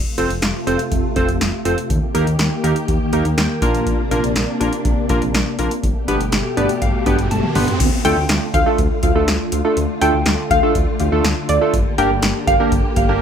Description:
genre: synth-pop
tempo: 122 BPM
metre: 4/4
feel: straight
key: unclear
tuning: A4 = 440 Hz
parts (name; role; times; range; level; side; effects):
- soft string machine; sustained chords; 0.0-13.2 s; B2 to G4; -22 LUFS; left 1 dB; ensemble chorus
- smooth gliding synth bass; bass; 0.0-13.2 s; F1 to Eb2; -22 LUFS; equal; none
- warm analog keys; accompaniment; 0.2-13.2 s; A3 to C6; -20 LUFS; right 1 dB; chorus
- electro analog drum machine; drums; 0.2-13.1 s; crash cymbal, hi-hat, kick drum, snare drum, toms; -20 LUFS; equal; none
- riser; sound effects; 6.9-7.8 s; none; -26 LUFS; right 3 dB; none
- warbly dusty pluck; second line; 8.0-12.6 s; D5 to G5; -20 LUFS; equal; chorus, digital delay
room: moderate studio reverb, RT60 0.6 s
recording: none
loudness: -15 LUFS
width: side -8 dB against mid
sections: 0.0-7.8 A section; 7.8-13.2 B section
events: synth keys fill 3.1-3.9, 6.3-7.8; riser 6.9-7.8; drum fill 7.3-7.8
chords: 0.0 F; 1.9 Eb; 3.6 Bbadd9; 5.8 Gadd9; 7.8 Dm; 11.7 Gm

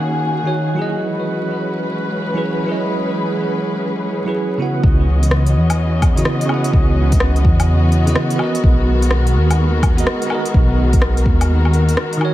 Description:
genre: future garage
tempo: 126 BPM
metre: 4/4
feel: swing 64% on 16ths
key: C# dorian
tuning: A4 = 441 Hz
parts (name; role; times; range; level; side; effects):
- bell-like tine electric piano; accompaniment; 0.0-12.3 s; C#3 to F#5; -21 LUFS; right 2 dB; fast stereo tremolo, sidechain pumping, ping-pong delay
- dark studio string section; sustained chords; 0.0-12.3 s; D#3 to D#5; -21 LUFS; left 2 dB; sidechain pumping
- drifting glass-harmonics texture; texture; 0.0-4.8 s; F#5; -33 LUFS; right 6 dB; chorus, built-in reverb
- deep house drum kit; drums; 0.1-12.3 s; hi-hat, rim click, woodblock; -22 LUFS; left 1 dB; low-pass filter on hats, small room ambience, low-pass filter on snare, low-pass filter on perc
- dark detuned saw bass; bass; 4.8-12.0 s; B1 to E2; -15 LUFS; equal; tube saturation, sidechain pumping
- electronic kick drum; drums; 4.8-11.4 s; none; -15 LUFS; equal; small room ambience
room: digital ambience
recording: vinyl crackle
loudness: -14 LUFS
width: side -14 dB against mid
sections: 0.0-4.8 A section; 4.8-12.3 B section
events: none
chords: 0.0 D#m7; 1.0 F#9sus4; 4.8 C#m11; 8.6 G#m9/B

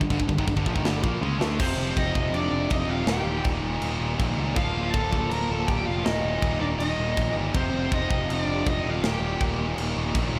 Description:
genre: heavy metal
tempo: 161 BPM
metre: 4/4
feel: straight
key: unclear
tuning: A4 = 440 Hz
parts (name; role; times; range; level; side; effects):
- heavy high-gain guitar; riff; 0.0-10.4 s; Eb2 to D4; -33 LUFS; equal; distortion, slapback echo
- tight distorted guitar; riff; 0.0-10.4 s; Eb2 to D4; -34 LUFS; equal; distortion, slapback echo
- picked electric bass; bass; 0.0-10.4 s; D1 to D2; -32 LUFS; equal; none
- tight metal drum kit; drums; 0.0-10.2 s; china cymbal, crash cymbal, kick drum, snare drum, toms; -31 LUFS; equal; none
- high-gain lead guitar; melody; 1.6-9.4 s; C5 to Bb5; -33 LUFS; equal; distortion, digital delay
- high-gain lead guitar; second line; 1.6-9.4 s; C4 to Bb4; -37 LUFS; equal; distortion, digital delay
room: moderate lush hall reverb, RT60 1.7 s, small room ambience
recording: big arena sound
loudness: -25 LUFS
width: mono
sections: 0.0-1.6 A section; 1.6-10.4 B section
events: drum fill 1.2-1.6; half time 1.6-10.4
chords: 0.0 G5; 1.6 F5; 3.1 Eb; 4.6 Bb/D; 6.1 Eb5; 7.5 F5; 9.0 Eb

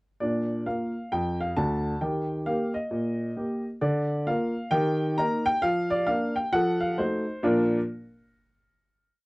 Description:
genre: jazz, stride piano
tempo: 133 BPM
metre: 4/4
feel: swing 63% on 8ths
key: Bb major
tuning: A4 = 440 Hz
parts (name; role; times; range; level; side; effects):
- clear upright piano; solo; 0.2-7.8 s; D2 to Bb5; -24 LUFS; equal; none
room: light reverb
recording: dry, close 1970s-style studio recording, faint mains hum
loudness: -24 LUFS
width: side -25 dB against mid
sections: 0.2-7.4 A section; 7.4-9.3 final chord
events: none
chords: 0.2 Bb; 2.0 Eb; 3.8 Bb/D; 4.7 Eb; 5.6 Bb/F; 6.5 F7b9; 7.4 Bb

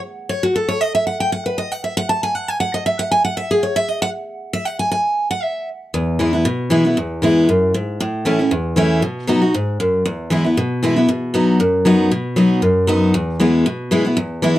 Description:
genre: bluegrass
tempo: 233 BPM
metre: 4/4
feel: straight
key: E major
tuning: A4 = 440 Hz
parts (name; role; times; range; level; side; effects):
- picked steel-string acoustic guitar; solo; 0.3-14.6 s; E2 to A5; -15 LUFS; equal; none
room: light reverb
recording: dry, close 1970s-style studio recording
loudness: -15 LUFS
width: side -14 dB against mid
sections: 0.0-5.9 A section; 5.9-14.2 B section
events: steel-string acoustic guitar solo 0.0-5.9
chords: 0.0 N.C.; 5.9 E; 8.0 A; 9.0 B; 10.1 E; 11.1 B; 13.1 E

